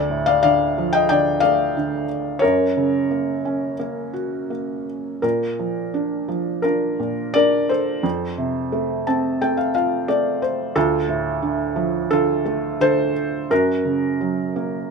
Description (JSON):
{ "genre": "classical, lyrical solo piano", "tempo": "87 BPM", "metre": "4/4", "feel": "uneven beats, rubato", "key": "unclear", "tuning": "A4 = 440 Hz", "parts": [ { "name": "felt-muted upright piano", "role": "solo", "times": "0.0-14.9 s", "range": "D2 to A5", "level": "-18 LUFS", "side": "equal", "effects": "none" } ], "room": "light reverb", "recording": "minimal, uncompressed stereo recording", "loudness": "-18 LUFS", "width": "side -5 dB against mid", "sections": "0.0-14.9 A section", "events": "felt piano fill 8.7-10.8", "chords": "0.0 Dm; 2.4 Gb; 5.2 Bb; 8.0 F; 10.8 Dm; 13.5 Gb" }